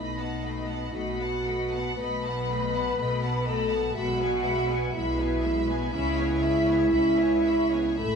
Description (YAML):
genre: cinematic, emotional film score for orchestra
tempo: 60 BPM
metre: 4/4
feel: rubato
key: unclear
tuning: A4 = 440 Hz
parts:
  - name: rich studio violin section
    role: melody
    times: 0.0-8.2 s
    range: G#5 to B5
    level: -38 LUFS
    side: left 1 dB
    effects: none
  - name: small flute group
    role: second line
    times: 0.0-8.2 s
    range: D#5 to B5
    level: -34 LUFS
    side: left 2 dB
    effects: none
  - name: warm studio violin section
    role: second line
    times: 0.0-8.2 s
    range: B4 to F#5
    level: -38 LUFS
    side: left 1 dB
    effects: none
  - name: warm studio viola section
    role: accompaniment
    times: 0.0-8.2 s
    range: G#3 to C#4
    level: -36 LUFS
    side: left 2 dB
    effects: none
  - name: dark French horn section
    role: sustained chords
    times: 0.0-8.2 s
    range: D#4 to B4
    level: -26 LUFS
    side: right 1 dB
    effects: none
  - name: dark studio double bass section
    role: bass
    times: 0.0-8.2 s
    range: A1 to C#2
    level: -32 LUFS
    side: right 1 dB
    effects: none
  - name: rich studio cello section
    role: bass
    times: 0.0-8.2 s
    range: A2 to C#3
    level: -35 LUFS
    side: left 1 dB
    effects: none
room: wet stone room reverb, RT60 1.3 s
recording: nothing above 11.0 kHz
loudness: -24 LUFS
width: side -6 dB against mid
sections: 0.0-8.2 A section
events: none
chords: 0.0 B7; 4.0 E/B; 5.9 C#m7